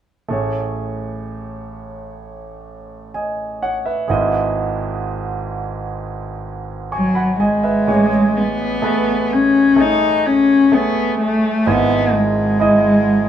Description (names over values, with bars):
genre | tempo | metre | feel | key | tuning
pop | 64 BPM | 4/4 | straight | unclear | A4 = 440 Hz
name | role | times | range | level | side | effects
bright concert grand piano | accompaniment | 0.3-13.3 s | G#1 to C#6 | -20 LUFS | right 3 dB | none
warm cello | melody | 6.9-13.3 s | F#3 to D#4 | -14 LUFS | left 2 dB | none
room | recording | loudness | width
wet studio ambience, RT60 0.5 s | band playing live in one room | -15 LUFS | side -10 dB against mid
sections
0.3-7.9 A section; 7.9-13.3 B section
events
none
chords
0.3 Amaj7; 4.1 Emaj7/G#; 7.9 Amaj7; 11.7 Emaj7/G#